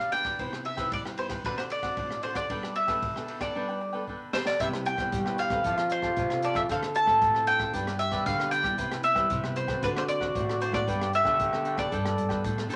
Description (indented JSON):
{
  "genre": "samba and choro",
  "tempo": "115 BPM",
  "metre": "4/4",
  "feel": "straight",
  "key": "C major",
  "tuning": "A4 = 438 Hz",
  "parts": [
    { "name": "mandolin", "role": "melody", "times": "0.0-12.8 s", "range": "B4 to A5", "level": "-30 LUFS", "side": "equal", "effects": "none" },
    { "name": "cavaquinho", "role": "accompaniment", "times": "0.0-12.8 s", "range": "D4 to A5", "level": "-40 LUFS", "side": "equal", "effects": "none" },
    { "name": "nylon-string guitar", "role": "accompaniment", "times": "0.0-12.8 s", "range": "G2 to A4", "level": "-42 LUFS", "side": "equal", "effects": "none" },
    { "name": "open jazz drum kit", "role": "drums", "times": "0.0-12.8 s", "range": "hi-hat, kick drum, ride cymbal, rim click, snare drum", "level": "-39 LUFS", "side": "equal", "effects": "none" },
    { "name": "growling trombone", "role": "second line", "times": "4.6-12.7 s", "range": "E4 to A4", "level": "-35 LUFS", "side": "equal", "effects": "none" },
    { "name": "nylon-string guitar", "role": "bass", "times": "4.6-12.8 s", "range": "G2 to G3", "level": "-37 LUFS", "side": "equal", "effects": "none" }
  ],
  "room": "wet club reverb, RT60 0.7 s",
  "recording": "none",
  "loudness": "-28 LUFS",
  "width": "mono",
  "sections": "0.0-4.6 A section; 4.6-12.8 B section",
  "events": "drum fill 4.1-4.6",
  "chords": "0.4 Cmaj7; 1.4 D7; 2.5 Gadd9; 4.6 Cmaj7; 5.6 Fadd9; 6.7 Dm7; 7.7 G; 8.8 Cmaj7; 9.8 D7; 10.9 Gadd9",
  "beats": "| 0.40 0.92 1.45 1.98 | 2.50 3.03 3.55 4.08 | 4.60 5.12 5.65 6.17 | 6.69 7.22 7.74 8.26 | 8.79 9.31 9.83 10.36 | 10.88 11.40 11.93 12.45"
}